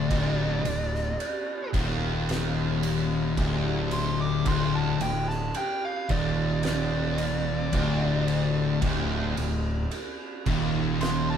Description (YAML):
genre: stoner and doom metal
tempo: 55 BPM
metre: 4/4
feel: straight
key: unclear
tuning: A4 = 441 Hz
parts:
  - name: fuzz lead guitar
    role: melody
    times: 0.0-11.4 s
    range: D5 to D6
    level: -32 LUFS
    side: right 1 dB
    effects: distortion
  - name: sludgy distorted guitar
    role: riff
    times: 0.0-11.4 s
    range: D2 to Eb2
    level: -31 LUFS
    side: left 2 dB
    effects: overdrive
  - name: thick fuzz guitar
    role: riff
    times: 0.0-11.4 s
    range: D2 to Eb2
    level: -32 LUFS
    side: left 6 dB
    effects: distortion
  - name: thick fuzz guitar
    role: riff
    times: 0.0-11.4 s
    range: D2 to Eb2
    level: -30 LUFS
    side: right 2 dB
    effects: distortion
  - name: fuzz fingered electric bass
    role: bass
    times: 0.0-11.4 s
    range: D1 to Eb1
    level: -30 LUFS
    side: equal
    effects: overdrive
  - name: oversized low-tuned drum kit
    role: drums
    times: 0.1-11.3 s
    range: kick drum, ride cymbal, snare drum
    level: -32 LUFS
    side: right 1 dB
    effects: none
room: moderate small room reverb, RT60 0.5 s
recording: band playing live in one room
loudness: -24 LUFS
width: side -8 dB against mid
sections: 0.0-11.4 A section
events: lead electric guitar solo 0.0-11.4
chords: 0.0 D5